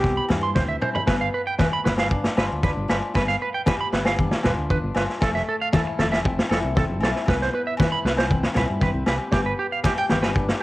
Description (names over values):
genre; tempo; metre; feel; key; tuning
highlife guitar band; 116 BPM; 4/4; straight; G mixolydian; A4 = 440 Hz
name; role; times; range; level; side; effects
mellow trumpet; melody; 0.0-0.5 s; G4; -25 LUFS; equal; cassette tape
breathy alto saxophone; second line; 0.0-0.5 s; none; barely audible; none; none
fingerpicked swing-style acoustic guitar; accompaniment; 0.0-10.6 s; G2 to G4; -30 LUFS; left 4 dB; cassette tape
fingered electric bass; bass; 0.0-10.5 s; F1 to G2; -28 LUFS; equal; none
vintage drum kit; drums; 0.0-10.6 s; kick drum, snare drum, toms; -24 LUFS; equal; cassette tape
congas; percussion; 0.1-10.4 s; none; -26 LUFS; left 2 dB; none
clean electric guitar; arpeggios; 0.2-10.6 s; G4 to C6; -26 LUFS; right 4 dB; spring reverb, cassette tape
agogo bells; percussion; 0.3-10.6 s; none; -33 LUFS; left 3 dB; none
room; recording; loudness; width
little or no reverb; home recording on cassette; -20 LUFS; side -17 dB against mid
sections
0.0-1.1 A section; 1.1-10.6 B section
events
drum fill 0.6-1.1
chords
0.0 Cmaj7; 1.1 G7; 5.2 Fmaj7; 7.3 Cmaj7; 9.3 G